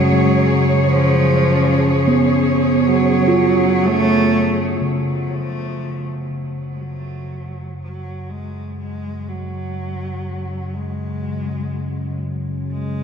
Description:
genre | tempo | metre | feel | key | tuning
dark ambient drone | 61 BPM | 4/4 | straight | unclear | A4 = 440 Hz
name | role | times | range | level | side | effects
rich cello | melody | 0.0-13.0 s | E#3 to A3 | -22 LUFS | equal | ping-pong delay
rich symphonic cello section | sustained chords | 0.0-4.8 s | C#3 to C#5 | -20 LUFS | equal | none
deep rumbling drone | drone | 0.0-13.0 s | F#2 to C#3 | -22 LUFS | left 1 dB | built-in reverb
gamelan-type bossed gongs | arpeggios | 0.1-10.7 s | C#3 to E#4 | -21 LUFS | right 2 dB | ping-pong delay
room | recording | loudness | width
wet cathedral reverb, RT60 5.7 s | dark, warm production | -16 LUFS | side -6 dB against mid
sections
0.0-4.8 A section; 4.8-13.0 B section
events
fade-in on synth drone 4.8-13.0; fade-in on cello 4.8-13.0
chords
0.0 F#sus2

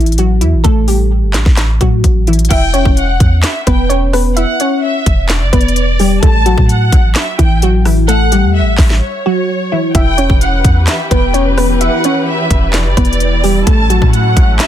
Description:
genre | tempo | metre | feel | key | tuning
hip hop, trap | 129 BPM | 4/4 | half-time | E dorian | A4 = 440 Hz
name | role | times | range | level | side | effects
glassy wavetable pluck | melody | 0.0-14.6 s | E3 to E5 | -15 LUFS | left 1 dB | chorus, tape echo
clean 808-style bass | bass | 0.0-14.6 s | E1 to A2 | -13 LUFS | equal | none
trap drum kit | drums | 0.0-14.7 s | crash cymbal, handclaps, hi-hat, kick drum, rim click, snare drum | -13 LUFS | equal | none
warm studio violin section | second line | 2.5-14.7 s | C#5 to A5 | -18 LUFS | equal | tape echo
dark chamber string section | sustained chords | 9.9-14.7 s | E3 to B4 | -21 LUFS | left 1 dB | none
room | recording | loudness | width
little or no reverb | dense, heavily limited modern master | -9 LUFS | side -11 dB against mid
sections
0.0-2.5 A section; 2.5-14.7 B section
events
break 9.0-9.9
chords
0.0 A5; 2.5 Em; 6.2 A; 9.9 Em; 13.7 A

